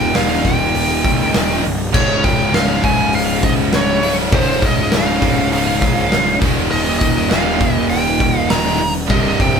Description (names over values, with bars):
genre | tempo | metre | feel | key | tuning
hard rock | 100 BPM | 4/4 | straight | unclear | A4 = 444 Hz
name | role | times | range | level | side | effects
biting lead guitar | melody | 0.0-9.6 s | C5 to Bb5 | -19 LUFS | right 1 dB | overdrive
distorted electric guitar | riff | 0.0-9.6 s | C2 to Eb3 | -22 LUFS | left 8 dB | overdrive
heavy high-gain guitar | riff | 0.0-9.6 s | C2 to Eb3 | -20 LUFS | right 7 dB | distortion
fuzz picked electric bass | bass | 0.0-9.6 s | C1 to Db2 | -23 LUFS | equal | overdrive
big rock drum kit | drums | 0.1-9.5 s | crash cymbal, hi-hat, kick drum, snare drum | -18 LUFS | equal | none
crunchy overdriven guitar | riff | 1.9-9.6 s | C2 to Eb3 | -25 LUFS | left 1 dB | none
room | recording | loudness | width
moderate studio ambience, RT60 0.5 s | band playing live in one room | -13 LUFS | side -6 dB against mid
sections
0.0-9.6 A section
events
none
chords
0.0 Eb; 1.9 Db; 6.4 Eb